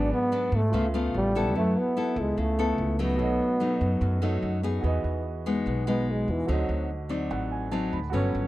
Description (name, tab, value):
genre	bossa nova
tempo	146 BPM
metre	4/4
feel	straight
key	E major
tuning	A4 = 440 Hz
part	mellow trombone	melody	0.0-6.9 s	E3 to D4	-27 LUFS	right 1 dB	none
part	nylon-string guitar	accompaniment	0.0-8.5 s	F#2 to A4	-30 LUFS	left 3 dB	none
part	warm concert grand piano	accompaniment	0.0-8.5 s	E#4 to B5	-35 LUFS	right 6 dB	none
part	upright bass	bass	0.0-8.5 s	G1 to G#2	-28 LUFS	equal	none
room	light reverb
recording	dry, close 1970s-style studio recording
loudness	-24 LUFS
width	side -16 dB against mid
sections	0.0-4.8 A section; 4.8-8.5 B section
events	trombone solo 4.8-8.5; grand piano fill 6.9-8.1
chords	0.0 G#m7b5; 0.7 C#7alt; 1.6 F#m7; 3.2 B7; 4.8 Emaj7; 6.5 D7b9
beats	0.32 0.73 1.14 | 1.55 1.96 2.37 2.78 | 3.19 3.61 4.02 4.43 | 4.84 5.25 5.66 6.07 | 6.49 6.90 7.31 7.72 | 8.13